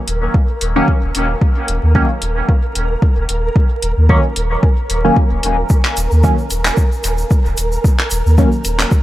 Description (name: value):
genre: dub techno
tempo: 112 BPM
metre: 4/4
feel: swing 55% on 16ths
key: Eb minor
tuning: A4 = 440 Hz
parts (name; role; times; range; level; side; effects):
- flickering grainy texture; texture; 0.0-9.0 s; Bb4; -25 LUFS; right 2 dB; built-in reverb, sidechain pumping
- soft dub sub bass; bass; 0.1-8.8 s; Eb1 to Eb2; -16 LUFS; equal; sidechain pumping
- deep house drum kit; drums; 0.1-8.9 s; handclaps, hi-hat; -20 LUFS; equal; overdrive, dub echo
- electronic kick drum; drums; 0.3-9.0 s; none; -13 LUFS; equal; overdrive
- resonant sweep polysynth; stabs; 0.8-8.5 s; Eb3 to Db4; -19 LUFS; equal; chorus, phaser, sidechain pumping, dub echo
- egg shaker; percussion; 5.7-9.0 s; none; -29 LUFS; equal; none
room: digital ambience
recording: vinyl crackle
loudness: -12 LUFS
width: side -15 dB against mid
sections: 0.0-9.0 A section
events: filter sweep on analog polysynth 0.0-9.0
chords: 0.0 Eb5